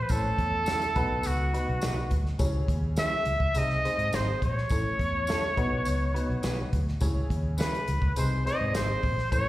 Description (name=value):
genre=uptempo 1960s-style soul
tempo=104 BPM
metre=4/4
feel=straight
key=C# minor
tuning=A4 = 440 Hz
part: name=clear trumpet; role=melody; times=0.0-9.5 s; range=F#4 to E5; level=-29 LUFS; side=equal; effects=slapback echo
part: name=vintage muted fingered electric bass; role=bass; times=0.0-9.5 s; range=G#1 to G#2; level=-29 LUFS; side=equal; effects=none
part: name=clear upright piano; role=accompaniment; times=0.1-9.5 s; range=A2 to C#5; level=-35 LUFS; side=left 2 dB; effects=slapback echo
part: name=natural country drum kit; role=drums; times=0.1-9.5 s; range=hi-hat, kick drum, snare drum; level=-31 LUFS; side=equal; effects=none
part: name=tambourine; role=percussion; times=0.1-9.5 s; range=none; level=-44 LUFS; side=left 2 dB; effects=none
part: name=electric guitar through a small old amp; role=stabs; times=0.7-8.9 s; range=B#3 to B4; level=-37 LUFS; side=right 4 dB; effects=slapback echo
room=light reverb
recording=live gig heard through the venue's PA, recital hall reverb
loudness=-25 LUFS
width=side -16 dB against mid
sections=0.0-9.5 A section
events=none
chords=0.1 A; 1.0 B; 2.4 C#m; 3.6 G#/B#; 4.7 A; 5.6 B; 7.0 C#m; 8.2 G#/B#